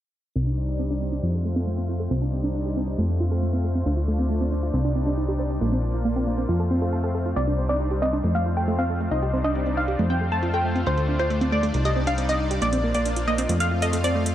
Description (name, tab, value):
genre	uplifting trance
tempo	137 BPM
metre	4/4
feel	straight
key	C dorian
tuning	A4 = 440 Hz
part	supersaw pad	sustained chords	0.4-14.3 s	G3 to F5	-30 LUFS	left 1 dB	none
part	wide unison pluck	arpeggios	0.4-14.3 s	A3 to A5	-28 LUFS	right 2 dB	dub echo
part	plucky analog bass	bass	0.4-14.3 s	Bb1 to F2	-25 LUFS	equal	none
part	electronic hi-hat	drums	0.4-14.3 s	none	-36 LUFS	right 1 dB	low-pass filter on hats, studio reverb
part	wide unison pluck	melody	7.4-14.3 s	C5 to A5	-26 LUFS	equal	dub echo
room	light reverb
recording	low-pass filter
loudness	-21 LUFS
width	side -12 dB against mid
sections	0.4-14.3 A section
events	filter sweep on synth pluck 0.4-14.3; filter sweep 0.4-14.3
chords	0.4 Cmadd9; 1.2 F; 2.1 Cmadd9; 3.0 F; 3.9 Dm7; 4.7 Cmadd9; 5.6 Bbadd9; 6.5 F; 7.4 Cmadd9; 8.2 F; 9.1 Cmadd9; 10.0 F; 10.9 Dm7; 11.7 Cmadd9; 12.6 Bbadd9; 13.5 F